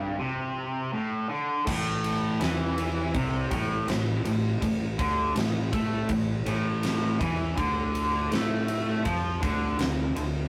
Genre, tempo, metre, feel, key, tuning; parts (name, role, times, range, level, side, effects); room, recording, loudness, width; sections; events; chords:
blues rock power trio and southern rock; 81 BPM; 4/4; straight; A4 = 439 Hz
overdriven electric guitar; riff; 0.0-10.5 s; G2 to A3; -30 LUFS; equal
fuzz fingered electric bass; bass; 0.0-10.5 s; G1 to A2; -33 LUFS; equal; overdrive
huge arena drum kit; drums; 1.7-10.3 s; crash cymbal, kick drum, ride cymbal, snare drum; -34 LUFS; equal
moderate studio reverb, RT60 0.6 s; rough rehearsal-room recording, warm saturation; -28 LUFS; mono
0.0-1.7 A section; 1.7-10.5 B section
0.0 A5; 7.6 D5